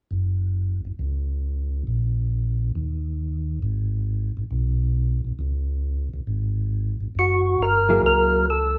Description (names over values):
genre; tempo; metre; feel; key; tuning
jazz; 136 BPM; 4/4; swing 67% on 8ths; F# mixolydian; A4 = 439 Hz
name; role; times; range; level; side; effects
mellow tonewheel organ; bass; 0.1-8.8 s; F#1 to D#2; -26 LUFS; equal; chorus vibrato, slow rotary speaker
percussive tonewheel organ; melody; 7.2-8.8 s; F#4 to A#4; -21 LUFS; equal; slow rotary speaker, overdrive
hollow-body jazz guitar; accompaniment; 7.9-8.4 s; F#3 to G#4; -26 LUFS; equal; none
room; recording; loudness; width
wet large studio reverb, RT60 0.9 s; band playing live in one room; -24 LUFS; mono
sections
0.1-7.2 A section; 7.2-8.8 B section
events
none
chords
0.1 F#5; 1.9 N.C.; 3.6 G#m; 5.4 C#5; 7.2 F#9